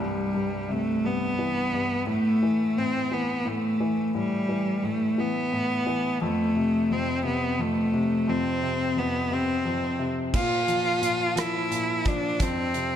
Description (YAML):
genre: six-eight pop ballad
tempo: 58 BPM (dotted quarters)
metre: 6/8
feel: straight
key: unclear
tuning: A4 = 440 Hz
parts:
  - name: bright cello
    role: melody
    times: 0.0-13.0 s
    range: G3 to F4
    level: -25 LUFS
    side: equal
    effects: tape echo
  - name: clear baby grand piano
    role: accompaniment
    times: 0.0-13.0 s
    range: C2 to F3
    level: -29 LUFS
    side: left 3 dB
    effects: none
  - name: natural country drum kit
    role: drums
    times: 10.3-12.9 s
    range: crash cymbal, hi-hat, kick drum, rim click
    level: -29 LUFS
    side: right 1 dB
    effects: none
room: moderate concert hall reverb, RT60 2.0 s, small room ambience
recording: dark, warm production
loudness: -23 LUFS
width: side -9 dB against mid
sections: 0.0-10.3 A section; 10.3-13.0 B section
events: none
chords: 0.0 C; 2.1 A5; 6.2 F; 10.3 Bb5; 12.4 F5